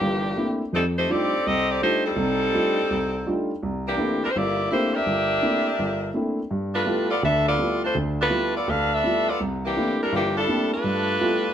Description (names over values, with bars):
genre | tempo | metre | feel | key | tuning
jazz | 166 BPM | 4/4 | swing 63% on 8ths | C major | A4 = 440 Hz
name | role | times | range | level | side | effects
warm saxophone section | melody | 0.0-11.5 s | E3 to F5 | -22 LUFS | equal | none
warm grand piano | accompaniment | 0.0-11.4 s | G1 to F4 | -25 LUFS | equal | none
room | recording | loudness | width
moderate large studio reverb, RT60 1.0 s | none | -21 LUFS | side -9 dB against mid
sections
0.0-11.5 A section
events
none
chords
0.0 C13; 0.7 F13; 3.6 C13; 6.5 G13; 9.4 C13; 10.8 G13